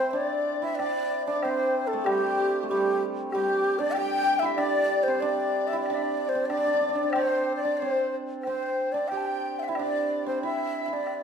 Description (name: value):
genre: chinese traditional, Chinese chamber ensemble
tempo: 94 BPM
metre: 4/4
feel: rubato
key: G zhi mode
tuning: A4 = 440 Hz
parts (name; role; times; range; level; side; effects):
- breathy bright low xiao; melody; 0.0-11.2 s; G4 to G5; -27 LUFS; right 2 dB; none
- hammered dulcimer; second line; 0.0-11.2 s; G3 to G4; -29 LUFS; right 2 dB; none
- large dizi; second line; 0.0-11.2 s; G4 to A5; -31 LUFS; left 9 dB; none
- woodblock; percussion; 0.8-11.2 s; none; -36 LUFS; left 3 dB; none
room: moderate recital hall reverb, RT60 1.7 s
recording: minimal, uncompressed stereo recording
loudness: -24 LUFS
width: side -7 dB against mid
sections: 0.0-11.2 A section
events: none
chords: none